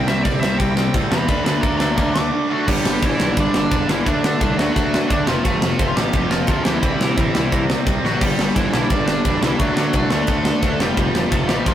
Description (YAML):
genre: punk rock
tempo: 174 BPM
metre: 4/4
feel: straight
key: unclear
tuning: A4 = 441 Hz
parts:
  - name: nasal lead guitar with a parked wah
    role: melody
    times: 0.0-11.7 s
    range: E3 to D6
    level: -24 LUFS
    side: equal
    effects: overdrive
  - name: distorted electric guitar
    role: riff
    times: 0.0-11.7 s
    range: F2 to D4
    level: -25 LUFS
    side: left 2 dB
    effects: distortion
  - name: distorted electric guitar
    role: riff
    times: 0.0-11.7 s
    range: F2 to D4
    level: -23 LUFS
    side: right 4 dB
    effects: overdrive
  - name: fuzz picked electric bass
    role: bass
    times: 0.0-11.7 s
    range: E1 to D3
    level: -24 LUFS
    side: equal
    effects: overdrive
  - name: tight metal drum kit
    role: drums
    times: 0.1-11.7 s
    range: crash cymbal, kick drum, ride cymbal, snare drum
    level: -20 LUFS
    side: equal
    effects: none
room: light reverb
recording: rough rehearsal-room recording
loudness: -16 LUFS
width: side -11 dB against mid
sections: 0.0-2.7 A section; 2.7-11.7 B section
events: lead electric guitar solo 0.0-2.7; break 2.3-2.7; drum fill 8.0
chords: 0.0 C; 1.3 D; 2.7 G5; 4.1 D; 5.3 F; 6.8 C; 8.2 G5; 9.6 D; 10.8 F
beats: 0.25 0.60 0.95 | 1.29 1.64 1.99 2.33 | 2.68 3.02 3.37 3.72 | 4.06 4.41 4.75 5.10 | 5.45 5.79 6.14 6.48 | 6.83 7.17 7.52 7.86 | 8.21 8.55 8.90 9.24 | 9.59 9.93 10.28 10.62 | 10.97 11.31 11.66